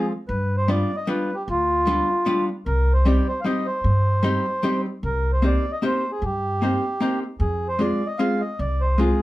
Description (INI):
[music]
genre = musette waltz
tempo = 152 BPM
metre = 3/4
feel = swing 55% on 8ths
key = C minor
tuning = A4 = 440 Hz
[part]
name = mellow accordion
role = melody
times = 0.0-9.2 s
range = F4 to F5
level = -25 LUFS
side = equal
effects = none
[part]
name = archtop guitar, miked and amplified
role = accompaniment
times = 0.0-9.2 s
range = F3 to Ab4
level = -23 LUFS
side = left 1 dB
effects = none
[part]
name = upright bass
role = bass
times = 0.3-9.1 s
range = C2 to G2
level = -22 LUFS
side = equal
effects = none
[part]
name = concert harp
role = second line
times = 9.0-9.2 s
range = F4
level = -25 LUFS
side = left 4 dB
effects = none
[sound]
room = wet small room reverb, RT60 0.5 s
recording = band playing live in one room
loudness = -20 LUFS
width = side -17 dB against mid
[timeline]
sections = 0.0-5.0 A section; 5.0-9.2 A section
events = none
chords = 0.3 G7; 2.7 Cm; 5.0 Cm7; 7.4 Fm